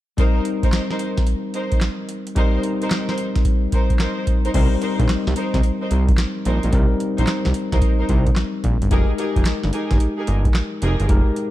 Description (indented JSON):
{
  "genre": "R&B, new jack swing",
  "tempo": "110 BPM",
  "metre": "4/4",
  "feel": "swing 66% on 16ths",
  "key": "C minor",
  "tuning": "A4 = 440 Hz",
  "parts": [
    { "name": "barky tine electric piano", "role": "accompaniment", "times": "0.2-11.5 s", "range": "G3 to Bb4", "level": "-24 LUFS", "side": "left 4 dB", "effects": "auto-pan" },
    { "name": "warm symphonic string section", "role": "stabs", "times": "0.2-11.0 s", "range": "Eb4 to C5", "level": "-27 LUFS", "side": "right 2 dB", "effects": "tape echo" },
    { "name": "booming analog drum machine", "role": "drums", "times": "0.2-11.5 s", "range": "crash cymbal, handclaps, hi-hat, kick drum, snare drum", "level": "-19 LUFS", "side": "equal", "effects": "none" },
    { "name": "fat analog bass", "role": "bass", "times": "4.5-11.2 s", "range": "F1 to C2", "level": "-19 LUFS", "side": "equal", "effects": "none" }
  ],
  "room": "little or no reverb",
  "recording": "dark, warm production",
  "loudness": "-17 LUFS",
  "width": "side -14 dB against mid",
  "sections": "0.2-4.5 A section; 4.5-11.5 B section",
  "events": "none",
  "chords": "0.2 Cm7; 8.9 Fm11"
}